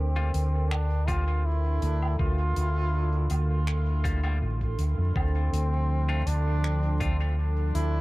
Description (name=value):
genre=ambient dub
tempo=81 BPM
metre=4/4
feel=straight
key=D minor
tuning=A4 = 445 Hz
part: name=bright trombone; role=melody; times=0.0-8.0 s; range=C4 to F4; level=-34 LUFS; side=equal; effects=dub echo
part: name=warm analog pad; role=sustained chords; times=0.0-8.0 s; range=D3 to A5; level=-36 LUFS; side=right 2 dB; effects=chorus, phaser
part: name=fingered electric bass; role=bass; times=0.0-8.0 s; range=A1 to F2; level=-25 LUFS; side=equal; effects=none
part: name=clean electric guitar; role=stabs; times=0.2-7.2 s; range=G3 to F4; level=-41 LUFS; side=left 3 dB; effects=dub echo
part: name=modern studio drum kit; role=drums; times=0.3-7.9 s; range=finger snaps, hi-hat, woodblock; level=-40 LUFS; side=equal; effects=dub echo
part: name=electronic kick drum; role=drums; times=1.1-7.2 s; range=none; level=-30 LUFS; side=equal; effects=none
room=small room ambience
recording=echo-heavy mix, vinyl crackle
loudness=-24 LUFS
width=side -19 dB against mid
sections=0.0-5.2 A section; 5.2-8.0 B section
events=none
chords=0.0 Gm7/D; 5.2 Dm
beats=0.71 1.45 | 2.19 2.93 3.67 4.42 | 5.16 5.90 6.64 7.38